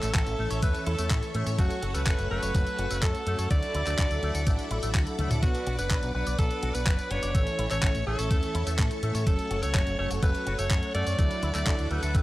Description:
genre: italo disco.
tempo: 125 BPM.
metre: 4/4.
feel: straight.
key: unclear.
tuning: A4 = 438 Hz.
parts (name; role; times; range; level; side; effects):
bright alto saxophone; melody; 0.0-12.2 s; F#4 to D5; -33 LUFS; equal; tape echo.
string machine, full ensemble; sustained chords; 0.0-12.2 s; A4 to D6; -36 LUFS; equal; ensemble chorus.
electric guitar with an envelope filter; arpeggios; 0.0-12.2 s; A3 to D5; -39 LUFS; left 2 dB; analog delay.
mellow synth brass; stabs; 0.0-12.2 s; E3 to B4; -36 LUFS; right 2 dB; chorus, cassette tape.
fingered electric bass with an envelope filter; bass; 0.0-12.2 s; F#1 to A2; -30 LUFS; equal; none.
clean 12-bit digital drum machine; drums; 0.0-12.2 s; handclaps, hi-hat, tambourine, toms; -34 LUFS; equal; none.
electronic kick drum; drums; 0.1-12.2 s; none; -26 LUFS; equal; none.
room: little or no reverb.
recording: dry, gritty hardware recording, transformer saturation.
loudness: -24 LUFS.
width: side -17 dB against mid.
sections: 0.0-12.2 A section.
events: drum fill 5.2.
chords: 0.0 A; 1.6 F#m; 3.5 Dadd9; 5.4 Bm; 7.3 A; 9.3 F#m; 11.2 Dadd9.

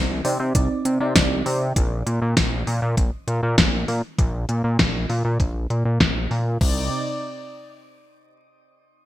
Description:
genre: synthwave.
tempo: 99 BPM.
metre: 4/4.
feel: straight.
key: C minor.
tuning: A4 = 440 Hz.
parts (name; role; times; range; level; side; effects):
fat analog bass; bass; 0.0-6.9 s; Bb1 to C3; -22 LUFS; equal; none.
mellow FM electric piano; stabs; 0.2-1.7 s; C4 to D5; -27 LUFS; right 2 dB; chorus, digital delay, shimmer reverb.
pop drum kit; drums; 0.2-6.7 s; crash cymbal, hi-hat, snare drum; -22 LUFS; left 1 dB; low-pass filter on hats, studio reverb, low-pass filter on toms, low-pass filter on snare, low-pass filter on cymbals, gated reverb.
electronic kick drum; drums; 0.5-6.7 s; none; -22 LUFS; equal; overdrive, studio reverb.
warm analog pad; sustained chords; 6.6-6.9 s; C3 to D5; -29 LUFS; right 1 dB; chorus, sidechain pumping, shimmer reverb.
room: light reverb.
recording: bright 1980s-style digital production.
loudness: -19 LUFS.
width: side -14 dB against mid.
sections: 0.0-6.6 A section; 6.6-9.0 B section.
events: none.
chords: 0.0 Cmadd9; 1.8 N.C..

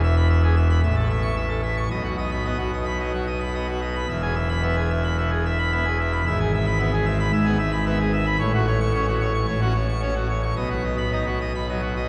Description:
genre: classical, organ toccata.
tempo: 111 BPM.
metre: 4/4.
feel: straight.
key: E major.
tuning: A4 = 440 Hz.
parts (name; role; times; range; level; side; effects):
pipe organ, full organ; solo; 0.0-12.1 s; E1 to C#6; -23 LUFS; equal; none.
room: wet cathedral reverb, RT60 6.5 s.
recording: recorded in a church or concert hall, vinyl crackle.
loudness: -23 LUFS.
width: mono.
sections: 0.0-12.1 A section.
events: none.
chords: 0.0 E; 0.8 A; 1.9 B; 4.1 E; 6.3 E/G#; 8.4 F#m/A; 10.6 B.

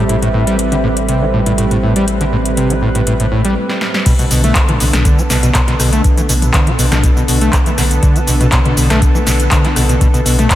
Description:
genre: acid house.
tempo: 121 BPM.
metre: 4/4.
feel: straight.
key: B phrygian.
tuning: A4 = 440 Hz.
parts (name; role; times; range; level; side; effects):
lush unison pad; sustained chords; 0.0-10.6 s; D3 to B4; -19 LUFS; equal; chorus, sidechain pumping.
overdriven acid bass; riff; 0.0-10.5 s; A2 to A3; -16 LUFS; equal; distortion, analog chorus, cassette tape, sidechain pumping, diffuse ambient delay.
saturated sub bass; bass; 0.0-10.5 s; A1 to B1; -17 LUFS; equal; sidechain pumping.
warbly tape-like pad; texture; 0.0-3.6 s; A4 to B5; -24 LUFS; right 1 dB; chorus, built-in reverb, sidechain pumping.
electro analog drum machine; drums; 0.1-10.6 s; crash cymbal, handclaps, hi-hat, rim click, shaker, snare drum, toms; -17 LUFS; left 1 dB; none.
electronic kick drum; drums; 4.1-10.6 s; none; -13 LUFS; equal; none.
room: moderate lush hall reverb, RT60 1.9 s, digital ambience.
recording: dreamy mix soaked in reverb.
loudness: -10 LUFS.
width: side -13 dB against mid.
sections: 0.0-4.1 A section; 4.1-10.6 B section.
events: break 3.6-4.1; drum fill 3.7-4.1; drop 4.1-10.6.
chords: 0.0 Am7; 4.1 Bm7.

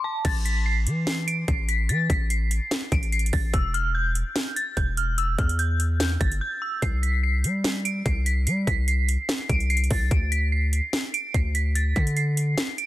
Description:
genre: hip hop, trap.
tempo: 146 BPM.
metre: 4/4.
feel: half-time.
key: A minor.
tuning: A4 = 440 Hz.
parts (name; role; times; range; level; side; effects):
dark detuned synth bell; melody; 0.0-12.9 s; A5 to D7; -28 LUFS; equal; chorus, phaser, tape echo.
warm 808-style bass; bass; 0.2-12.6 s; E1 to G3; -24 LUFS; equal; none.
trap drum kit; drums; 0.2-12.9 s; crash cymbal, hi-hat, kick drum, snare drum; -26 LUFS; equal; overdrive.
room: digital ambience.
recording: dense, heavily limited modern master.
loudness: -22 LUFS.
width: side -15 dB against mid.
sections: 0.2-12.9 A section.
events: break 0.0, 6.4-6.8, 12.6.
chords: 0.2 Am; 3.5 Em; 6.8 C5; 10.1 Amadd11/D (rootless).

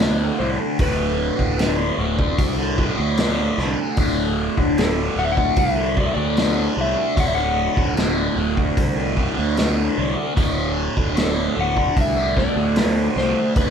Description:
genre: psychedelic rock.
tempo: 75 BPM.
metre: 4/4.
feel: straight.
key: D mixolydian.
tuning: A4 = 441 Hz.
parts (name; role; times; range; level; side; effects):
electric slide guitar; melody; 0.0-13.7 s; A4 to F#5; -25 LUFS; left 3 dB; none.
fuzz guitar; riff; 0.0-13.7 s; D2 to D3; -22 LUFS; equal; distortion, phaser.
fuzz picked electric bass; bass; 0.0-13.7 s; D1 to D2; -24 LUFS; equal; overdrive.
vintage drum kit; drums; 0.0-13.7 s; hi-hat, kick drum, snare drum; -23 LUFS; equal; none.
room: light reverb.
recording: band playing live in one room.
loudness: -18 LUFS.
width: side -7 dB against mid.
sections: 0.0-13.7 A section.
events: none.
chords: 0.0 D.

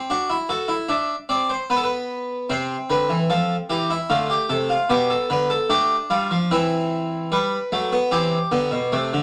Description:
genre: classical, baroque-style 3-part fugue for harpsichord.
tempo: 75 BPM.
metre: 3/4.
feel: straight.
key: unclear.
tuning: A4 = 440 Hz.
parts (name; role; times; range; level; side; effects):
harpsichord; solo; 0.0-9.2 s; B2 to E5; -22 LUFS; equal; none.
room: wet studio ambience, RT60 0.4 s.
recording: none.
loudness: -22 LUFS.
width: mono.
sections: 0.0-9.2 A section.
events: none.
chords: 0.1 D7; 1.7 N.C.; 2.5 C; 4.1 Dm7; 4.9 G7/B; 6.5 C/E; 7.3 G.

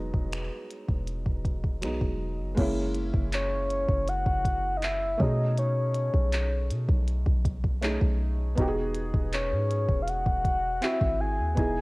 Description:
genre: contemporary R&B.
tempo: 80 BPM.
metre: 4/4.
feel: straight.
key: unclear.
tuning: A4 = 440 Hz.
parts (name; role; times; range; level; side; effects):
felt-muted upright piano; accompaniment; 0.0-11.8 s; F#3 to G#4; -33 LUFS; right 1 dB; cassette tape.
warm 808-style bass; bass; 0.0-11.8 s; E1 to B2; -29 LUFS; equal; none.
minimal click drum kit; drums; 0.1-11.7 s; crash cymbal, finger snaps, handclaps, hi-hat, kick drum; -28 LUFS; equal; cassette tape.
soft octave-layered synth lead; melody; 3.3-11.8 s; C#5 to G#5; -29 LUFS; left 1 dB; chorus, cassette tape.
room: digital ambience.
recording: home recording on cassette.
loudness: -25 LUFS.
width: side -24 dB against mid.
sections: 0.0-2.6 A section; 2.6-11.8 B section.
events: none.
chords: 0.0 Emaj7; 2.6 F#9; 5.2 B13; 8.6 Emaj7; 10.8 G#7b13.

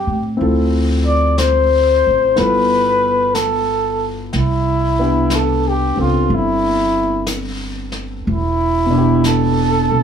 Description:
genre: jazz ballad.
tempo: 61 BPM.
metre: 4/4.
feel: swing 67% on 8ths.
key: C major.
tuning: A4 = 440 Hz.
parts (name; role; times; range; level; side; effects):
breathy trumpet; melody; 0.0-10.0 s; E4 to D5; -16 LUFS; left 1 dB; plate reverb.
warm concert grand piano; accompaniment; 0.0-10.0 s; B2 to E5; -20 LUFS; left 2 dB; none.
upright bass; bass; 0.0-10.0 s; E1 to A2; -20 LUFS; right 1 dB; none.
jazz brush drum kit; drums; 0.4-10.0 s; brushed snare drum, hi-hat, snare drum; -28 LUFS; left 3 dB; none.
room: moderate studio ambience, RT60 0.5 s.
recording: small room ambience.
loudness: -13 LUFS.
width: side -8 dB against mid.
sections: 0.0-10.0 A section.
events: none.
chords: 0.4 Dm9; 2.4 G13; 4.3 Cmaj9.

